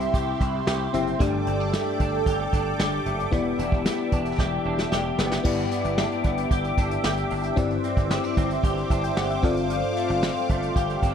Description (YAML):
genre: 1980s-style pop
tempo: 113 BPM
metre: 4/4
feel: straight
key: unclear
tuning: A4 = 441 Hz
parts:
  - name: FM electric piano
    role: accompaniment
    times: 0.0-11.1 s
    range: G2 to G5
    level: -28 LUFS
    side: left 5 dB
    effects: chorus, shimmer reverb
  - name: phased analog pad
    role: sustained chords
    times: 0.0-11.1 s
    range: G4 to D6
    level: -29 LUFS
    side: left 1 dB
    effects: phaser, chorus, shimmer reverb
  - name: direct-recorded clean electric guitar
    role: riff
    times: 0.0-11.1 s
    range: E3 to G4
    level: -31 LUFS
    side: right 5 dB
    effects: ensemble chorus, digital delay, shimmer reverb
  - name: gritty slap bass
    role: bass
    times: 0.0-11.1 s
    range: E1 to C2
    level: -30 LUFS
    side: right 1 dB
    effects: overdrive
  - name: vintage brush drum kit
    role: drums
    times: 0.0-11.1 s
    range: crash cymbal, hi-hat, kick drum, snare drum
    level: -26 LUFS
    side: equal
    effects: none
room: light reverb, small room ambience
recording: none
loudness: -22 LUFS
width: side -8 dB against mid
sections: 0.0-5.5 A section; 5.5-11.1 B section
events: drum fill 4.4-5.5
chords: 0.0 C; 1.2 Gsus2; 3.3 Em7; 5.5 Em7/G; 7.6 Cadd9/G; 9.4 Dm7/G